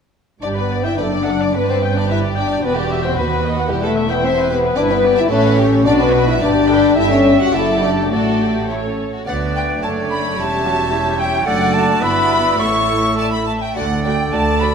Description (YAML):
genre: quick classical-period movement for symphony orchestra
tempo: 101-114 BPM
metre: 2/4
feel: rubato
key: G major, D major from 4.8 s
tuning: A4 = 440 Hz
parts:
  - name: rich chamber violin section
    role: second line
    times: 0.4-14.7 s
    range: G4 to C#6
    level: -24 LUFS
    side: equal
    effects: none
  - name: rich chamber viola section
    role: accompaniment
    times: 0.4-14.7 s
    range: F#3 to G5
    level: -23 LUFS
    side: right 2 dB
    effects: none
  - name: warm French horn section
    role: sustained chords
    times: 0.4-14.7 s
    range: G3 to F#4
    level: -18 LUFS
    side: left 3 dB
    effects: none
  - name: dark chamber double bass section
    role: bass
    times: 0.4-14.7 s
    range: E1 to D#2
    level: -25 LUFS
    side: right 5 dB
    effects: none
  - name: rich chamber cello section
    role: bass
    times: 0.4-14.7 s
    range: D2 to B2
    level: -24 LUFS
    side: right 4 dB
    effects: none
  - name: warm chamber violin section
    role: melody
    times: 1.0-14.7 s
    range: C#4 to E5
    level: -26 LUFS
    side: left 3 dB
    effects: none
  - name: bright concert flute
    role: second line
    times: 9.3-14.7 s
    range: F#5 to C#6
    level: -20 LUFS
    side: left 1 dB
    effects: none
  - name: clear oboe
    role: second line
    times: 9.3-14.7 s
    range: C#5 to E5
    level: -24 LUFS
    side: right 3 dB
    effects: none
  - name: warm clarinet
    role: second line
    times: 9.3-14.7 s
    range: E4 to B4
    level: -26 LUFS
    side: right 1 dB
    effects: none
room: wet scoring stage reverb, RT60 1.6 s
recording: none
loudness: -14 LUFS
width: side -6 dB against mid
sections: 0.4-9.3 A section; 9.3-14.7 B section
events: none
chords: 0.4 G; 1.0 D/F#; 1.5 G; 2.6 Em7; 3.2 B/D#; 3.7 Em; 4.8 Em7/G; 5.3 A9; 5.9 Bm; 6.4 G; 7.0 A7/G; 7.5 D/F#; 8.1 D/A; 8.7 A; 9.3 D; 10.4 C#dim/E; 11.5 D/F#; 12.0 Em/G; 12.6 A; 13.8 D